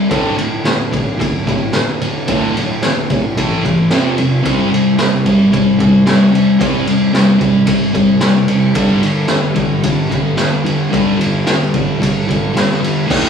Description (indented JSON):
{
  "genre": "garage rock duo or trio",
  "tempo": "111 BPM",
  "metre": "4/4",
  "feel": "straight",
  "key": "unclear",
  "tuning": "A4 = 444 Hz",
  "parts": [
    { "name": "thick fuzz guitar", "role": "riff", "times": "0.0-13.3 s", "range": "D2 to C4", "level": "-13 LUFS", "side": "equal", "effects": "distortion" },
    { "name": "raw garage drum kit", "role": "drums", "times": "0.1-13.2 s", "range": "crash cymbal, kick drum, ride cymbal, snare drum", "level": "-17 LUFS", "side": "left 1 dB", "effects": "none" }
  ],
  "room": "moderate small room reverb, RT60 0.5 s",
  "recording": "rough rehearsal-room recording, studio reverb",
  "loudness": "-12 LUFS",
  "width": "side -7 dB against mid",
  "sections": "0.0-13.1 A section",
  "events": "none",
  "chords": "0.1 D5; 3.4 A5; 3.9 F5; 4.4 C5; 8.8 G5"
}